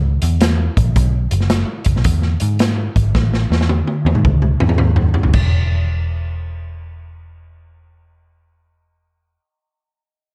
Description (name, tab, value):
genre	uptempo 1960s-style soul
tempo	110 BPM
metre	4/4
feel	swing 66% on 8ths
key	unclear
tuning	A4 = 440 Hz
part	vintage muted picked electric bass	bass	0.0-9.4 s	E1 to G#2	-19 LUFS	equal	none
part	swinging big-band drum kit	drums	0.2-5.5 s	crash cymbal, hi-hat, kick drum, snare drum, toms	-19 LUFS	equal	none
room	little or no reverb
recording	none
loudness	-16 LUFS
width	mono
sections	0.0-5.3 A section; 5.3-9.7 B section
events	drum fill 3.1-5.3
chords	none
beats	0.41 | 0.96 1.51 2.05 2.60 | 3.15 3.69 4.24 4.79 | 5.33 5.88 6.42 6.97 | 7.52 8.06 8.61 9.15